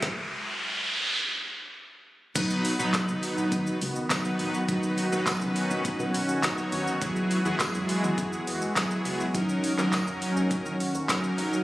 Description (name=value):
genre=dance-pop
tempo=103 BPM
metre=4/4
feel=straight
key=B major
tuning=A4 = 440 Hz
part: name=smooth R&B drum kit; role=drums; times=0.0-11.6 s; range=crash cymbal, handclaps, hi-hat, kick drum, shaker, snare drum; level=-30 LUFS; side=equal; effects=none
part: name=riser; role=sound effects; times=0.0-1.2 s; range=none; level=-28 LUFS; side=right 1 dB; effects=none
part: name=big bright polysynth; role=accompaniment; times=2.4-11.6 s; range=F#3 to C#5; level=-28 LUFS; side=equal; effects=chorus, sidechain pumping, low-pass filter
part: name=lush unison pad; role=sustained chords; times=2.7-11.6 s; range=D#3 to F#4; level=-32 LUFS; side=equal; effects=chorus, sidechain pumping, low-pass filter
part: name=plucky analog bass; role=bass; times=2.4-11.6 s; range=A#1 to D#3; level=-35 LUFS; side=equal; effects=sidechain pumping
part: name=tambourine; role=percussion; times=2.9-11.2 s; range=none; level=-42 LUFS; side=left 2 dB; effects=none
room=moderate lush hall reverb, RT60 2.0 s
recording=recorded on a phone in the room, club reverb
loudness=-25 LUFS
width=side -16 dB against mid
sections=0.0-2.4 A section; 2.4-11.6 B section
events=build-up 0.0-2.4; riser 0.0-2.4; filter sweep 0.0-2.4; stop 0.0-2.4; drop 2.4-11.6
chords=0.0 N.C.; 2.4 B; 7.0 Eadd9; 9.3 D#m7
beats=| 0.03 0.61 1.19 1.77 | 2.35 2.94 3.52 4.10 | 4.68 5.27 5.85 6.43 | 7.01 7.60 8.18 8.76 | 9.35 9.93 10.51 11.09